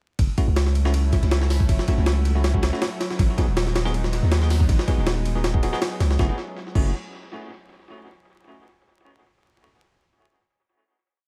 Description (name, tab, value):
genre	drum and bass, jungle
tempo	160 BPM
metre	4/4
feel	swing 53% on 16ths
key	F# dorian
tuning	A4 = 440 Hz
part	lush unison pad	sustained chords	0.5-6.4 s	F#3 to E4	-36 LUFS	equal	chorus, vintage 12-bit sampler grit
part	long sustained 808-style bass	bass	0.2-6.9 s	D#1 to D#2	-23 LUFS	equal	tube saturation
part	jungle sampler-style drum kit	drums	0.2-6.8 s	crash cymbal, hi-hat, kick drum, ride cymbal, snare drum	-26 LUFS	equal	overdrive, tape echo
part	bell-like tine electric piano	stabs	0.4-6.9 s	A3 to G#4	-34 LUFS	equal	tape echo
room	little or no reverb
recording	echo-heavy mix, vinyl crackle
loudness	-22 LUFS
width	mono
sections	0.2-6.2 drop; 6.2-7.7 final chord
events	drop 0.2-6.2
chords	0.2 F#m7; 3.2 G#m7; 6.2 F#m7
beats	| 0.19 0.56 0.94 1.31 | 1.69 2.06 2.44 2.81 | 3.19 3.56 3.94 4.32 | 4.69 5.07 5.44 5.82 | 6.19 6.57